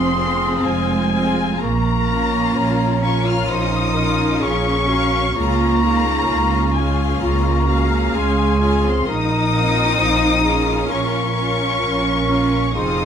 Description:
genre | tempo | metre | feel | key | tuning
cinematic, emotional film score for orchestra | 65 BPM | 4/4 | rubato | Bb minor | A4 = 441 Hz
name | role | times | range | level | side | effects
dark studio violin section | melody | 0.0-13.1 s | Ab5 to F6 | -22 LUFS | left 3 dB | none
dark clarinet | second line | 0.0-13.1 s | Eb4 to Db5 | -27 LUFS | left 2 dB | none
mellow hollow concert flute | second line | 0.0-13.1 s | Bb5 to Eb6 | -26 LUFS | left 3 dB | none
rich studio violin section | second line | 0.0-13.1 s | Ab4 to F5 | -29 LUFS | left 4 dB | none
rich studio viola section | accompaniment | 0.0-13.1 s | C4 to F5 | -24 LUFS | right 1 dB | none
rich studio cello section | bass | 0.0-13.1 s | Ab3 to F4 | -23 LUFS | right 2 dB | none
warm studio double bass section | bass | 0.0-13.1 s | F1 to Db2 | -21 LUFS | right 2 dB | none
room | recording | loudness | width
moderate scoring stage reverb, RT60 1.4 s | close, detailed microphones | -15 LUFS | side -8 dB against mid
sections
0.0-13.1 A section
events
none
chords
0.0 Fm; 1.6 Bbmadd9; 5.4 Db; 9.1 Bbmadd9

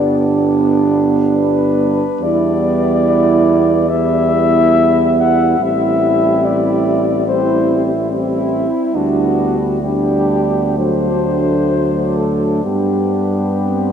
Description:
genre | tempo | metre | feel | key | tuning
classical, hymn-like piece for brass band | 60-73 BPM | 4/4 | rubato | G major | A4 = 440 Hz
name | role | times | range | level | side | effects
dark flugelhorn | melody | 0.0-13.9 s | E4 to F#5 | -18 LUFS | left 5 dB | none
mellow French horn section | second line | 0.0-13.9 s | C4 to E4 | -17 LUFS | right 6 dB | none
warm euphonium | accompaniment | 0.0-13.9 s | F#3 to G3 | -21 LUFS | right 2 dB | none
warm trombone section | accompaniment | 0.0-13.9 s | A3 to C4 | -22 LUFS | left 2 dB | none
warm tuba | bass | 0.0-13.9 s | G1 to G2 | -20 LUFS | equal | none
room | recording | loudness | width
wet cathedral reverb, RT60 6.1 s | in a vast, echoing space | -12 LUFS | side -8 dB against mid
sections
0.0-13.9 A section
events
none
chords
0.0 G; 2.2 Em7; 5.6 Am7; 9.0 G/D; 10.8 D7; 12.6 G

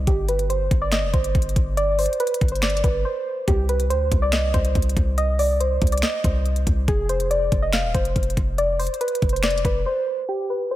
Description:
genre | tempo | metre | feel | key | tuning
hip hop, trap | 141 BPM | 4/4 | half-time | unclear | A4 = 439 Hz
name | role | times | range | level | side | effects
soft round pluck | melody | 0.0-10.8 s | G4 to F5 | -23 LUFS | equal | chorus, diffuse ambient delay
hard-hitting 808-style bass | bass | 0.0-9.9 s | Eb1 to D2 | -23 LUFS | equal | none
trap drum kit | drums | 0.1-9.7 s | finger snaps, hi-hat, kick drum, snare drum | -23 LUFS | equal | none
room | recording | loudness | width
light reverb | low-pass filter | -19 LUFS | side -14 dB against mid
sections
0.0-10.3 A section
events
break 3.1-3.5, 9.9-10.3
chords
0.1 Gsus4; 3.5 Cmadd9; 6.9 F5

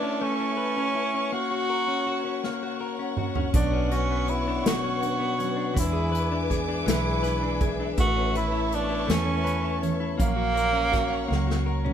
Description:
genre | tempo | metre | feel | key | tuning
six-eight pop ballad | 54 BPM (dotted quarters) | 6/8 | straight | unclear | A4 = 441 Hz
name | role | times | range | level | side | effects
breathy tenor saxophone | melody | 0.0-11.6 s | A#3 to F#4 | -27 LUFS | right 2 dB | none
direct-recorded clean electric guitar | accompaniment | 0.0-11.9 s | B2 to B4 | -30 LUFS | left 4 dB | none
warm studio string section | sustained chords | 0.0-11.9 s | A#4 to D6 | -33 LUFS | left 3 dB | none
unplugged drum kit | drums | 2.4-11.9 s | hi-hat, kick drum, snare drum, toms | -27 LUFS | equal | none
fingerpicked steel-string acoustic guitar | arpeggios | 3.5-11.9 s | E3 to D4 | -35 LUFS | right 5 dB | none
vintage muted fingered electric bass | bass | 3.5-11.9 s | F#1 to E2 | -28 LUFS | equal | none
room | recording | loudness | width
moderate studio reverb, RT60 0.6 s | band playing live in one room | -23 LUFS | side -9 dB against mid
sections
0.0-11.9 A section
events
drum fill 2.4-3.5, 11.3-11.9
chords
0.0 Aadd9; 1.3 F#/A#; 3.5 Bmadd9; 5.8 E7; 8.0 Aadd9; 10.2 F#/A#

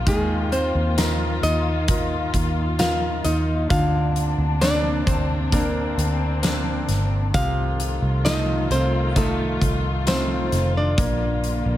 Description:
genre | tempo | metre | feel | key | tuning
pop ballad | 66 BPM | 4/4 | straight | unclear | A4 = 445 Hz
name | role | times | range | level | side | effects
clear baby grand piano | accompaniment | 0.0-11.8 s | C3 to Bb4 | -28 LUFS | right 1 dB | none
dark studio string section | sustained chords | 0.0-11.8 s | C3 to F4 | -29 LUFS | left 4 dB | none
vintage muted fingered electric bass | bass | 0.0-11.8 s | F1 to Eb2 | -24 LUFS | equal | none
flamenco guitar | melody | 0.1-11.8 s | Ab3 to F5 | -26 LUFS | equal | digital delay
huge arena drum kit | drums | 0.1-11.6 s | hi-hat, kick drum, snare drum | -25 LUFS | equal | none
tambourine | percussion | 1.0-10.3 s | none | -38 LUFS | left 5 dB | none
room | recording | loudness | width
light reverb | none | -19 LUFS | side -13 dB against mid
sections
0.0-11.8 A section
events
none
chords
0.1 Ebsus2; 3.7 Bbadd9/D; 7.3 F7/C; 11.0 Bb

